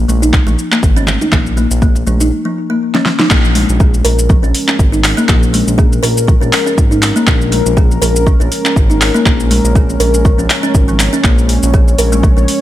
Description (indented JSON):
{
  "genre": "afro house",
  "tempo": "121 BPM",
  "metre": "4/4",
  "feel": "swing 56% on 16ths",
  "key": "Bb minor",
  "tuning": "A4 = 439 Hz",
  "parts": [
    { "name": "smooth gliding synth bass", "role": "bass", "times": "0.0-12.5 s", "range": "Ab1 to Bb1", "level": "-14 LUFS", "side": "equal", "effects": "sidechain pumping" },
    { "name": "kalimba", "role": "arpeggios", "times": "0.1-12.4 s", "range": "F3 to Bb4", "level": "-16 LUFS", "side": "left 1 dB", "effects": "sidechain pumping, ping-pong delay" },
    { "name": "deep house drum kit", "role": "drums", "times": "0.1-12.6 s", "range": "handclaps, hi-hat, shaker, snare drum", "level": "-16 LUFS", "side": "equal", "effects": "none" },
    { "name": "congas", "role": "percussion", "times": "0.1-2.2 s", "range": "none", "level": "-23 LUFS", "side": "right 5 dB", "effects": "none" },
    { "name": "electronic kick drum", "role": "drums", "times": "0.3-12.3 s", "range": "none", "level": "-11 LUFS", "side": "equal", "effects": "none" },
    { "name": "dark analog pad", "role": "sustained chords", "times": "3.7-12.6 s", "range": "Ab3 to Db5", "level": "-19 LUFS", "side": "equal", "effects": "chorus, sidechain pumping" }
  ],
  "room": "digital ambience",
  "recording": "none",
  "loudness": "-9 LUFS",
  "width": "side -13 dB against mid",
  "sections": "0.0-3.3 A section; 3.3-12.6 B section",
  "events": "break 2.3-3.3; drum fill 2.9-3.3; band accent 3.2; drop 3.3-12.6",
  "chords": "0.0 N.C.; 3.3 Bbm7",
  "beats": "0.33 0.83 | 1.32 1.82 2.31 2.81 | 3.31 3.80 4.30 4.79 | 5.29 5.79 6.28 6.78 | 7.27 7.77 8.27 8.76 | 9.26 9.75 10.25 10.74 | 11.24 11.74 12.23"
}